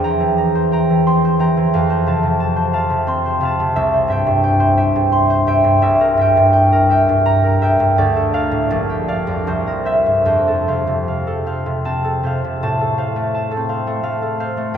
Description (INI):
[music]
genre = classical, solo harp piece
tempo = 73-92 BPM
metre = 3/4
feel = rubato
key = F major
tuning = A4 = 440 Hz
[part]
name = concert harp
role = solo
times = 0.0-14.8 s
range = Bb1 to C6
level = -14 LUFS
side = equal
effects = none
[sound]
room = wet cathedral reverb, RT60 5.2 s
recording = none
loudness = -14 LUFS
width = side -8 dB against mid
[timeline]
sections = 0.0-12.6 A section; 12.6-14.8 B section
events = none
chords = 0.0 C7/E; 1.7 F; 3.8 C; 5.8 C7; 8.0 Dm; 8.7 Gm7/Bb; 9.5 C7; 10.2 F; 12.6 F/A